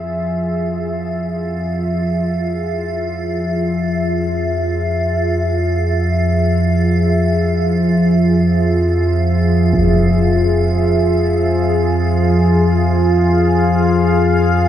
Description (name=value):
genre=dark ambient drone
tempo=free time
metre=none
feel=none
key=F harmonic minor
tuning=A4 = 441 Hz
part: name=deep dark ambient pad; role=sustained chords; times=0.0-14.7 s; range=F4 to F5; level=-20 LUFS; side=left 1 dB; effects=chorus, built-in reverb, shimmer reverb
part: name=analog drone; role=drone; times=0.0-14.7 s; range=F2 to F3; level=-15 LUFS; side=equal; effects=chorus
part: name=icy glass pad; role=texture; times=0.0-14.7 s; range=F4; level=-25 LUFS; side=right 3 dB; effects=chorus, built-in reverb, shimmer reverb
part: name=impact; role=percussion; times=9.7-9.9 s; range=none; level=-24 LUFS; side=equal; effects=low-pass filter on sfx
room=moderate huge ambient reverb, RT60 8.9 s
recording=nothing above 10.5 kHz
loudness=-14 LUFS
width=side -10 dB against mid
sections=0.0-14.7 A section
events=fade-in on ambient pad 0.0-14.7; fade-in on impacts and reversed cymbals 0.0-14.7; filter sweep on synth drone 0.0-14.7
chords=0.0 Fm